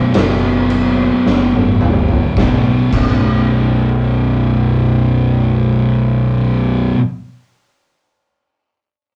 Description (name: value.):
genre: stoner and doom metal.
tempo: 54 BPM.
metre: 4/4.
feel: straight.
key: unclear.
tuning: A4 = 442 Hz.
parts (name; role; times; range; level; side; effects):
thick fuzz guitar; riff; 0.0-7.0 s; B1 to B2; -18 LUFS; equal; distortion.
thick fuzz guitar; riff; 0.0-7.0 s; B1 to B2; -21 LUFS; equal; distortion.
oversized low-tuned drum kit; drums; 0.1-3.2 s; crash cymbal, kick drum, snare drum, toms; -20 LUFS; equal; none.
fuzz picked electric bass; bass; 0.2-6.9 s; B0 to F#1; -20 LUFS; equal; overdrive.
room: moderate small room ambience, RT60 0.5 s.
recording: rough rehearsal-room recording, cassette tape.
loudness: -14 LUFS.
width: mono.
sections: 0.0-2.4 A section; 2.4-6.8 B section.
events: drum fill 1.3-2.4.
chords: 0.0 B5.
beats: 0.15 1.26 | 2.37 3.49 4.60 5.72.